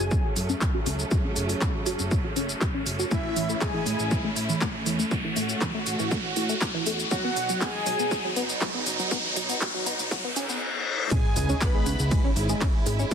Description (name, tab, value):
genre	melodic techno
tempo	120 BPM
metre	4/4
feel	straight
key	C# minor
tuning	A4 = 442 Hz
part	fat analog lead	melody	0.0-12.3 s	E4 to B4	-33 LUFS	left 1 dB	phaser, lush chorus, sidechain pumping, ping-pong delay
part	big bright polysynth	second line	0.0-12.3 s	E5 to B5	-36 LUFS	equal	sidechain pumping, digital delay
part	warm symphonic string section	sustained chords	0.0-13.1 s	C#3 to G#4	-33 LUFS	right 2 dB	sidechain pumping, low-pass filter
part	tight sequenced synth	arpeggios	0.0-13.0 s	E3 to C#5	-32 LUFS	equal	chorus, sidechain pumping, digital delay
part	fat analog bass	bass	0.0-13.0 s	F#1 to A2	-31 LUFS	equal	tube saturation, sidechain pumping
part	riser, reverse cymbal and sub drop	sound effects	0.0-13.1 s	none	-32 LUFS	left 1 dB	none
part	electronic kick drum	drums	0.1-13.1 s	none	-27 LUFS	equal	none
part	techno drum kit	drums	0.1-13.1 s	handclaps, hi-hat, ride cymbal, shaker	-32 LUFS	equal	none
room	light reverb, digital ambience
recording	dense, heavily limited modern master, high-pass filter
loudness	-24 LUFS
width	side -7 dB against mid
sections	0.0-11.1 A section; 11.1-13.1 B section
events	build-up 0.0-11.1; riser 0.0-10.6; filter sweep on synth arpeggio sound 0.0-11.1; filter sweep on string section 0.0-11.1; filter sweep 0.0-11.1; reverse cymbal 10.1-11.1; drop 11.1-13.1; impact 11.1-13.1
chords	0.0 F#m; 3.1 A; 7.1 B; 11.1 C#m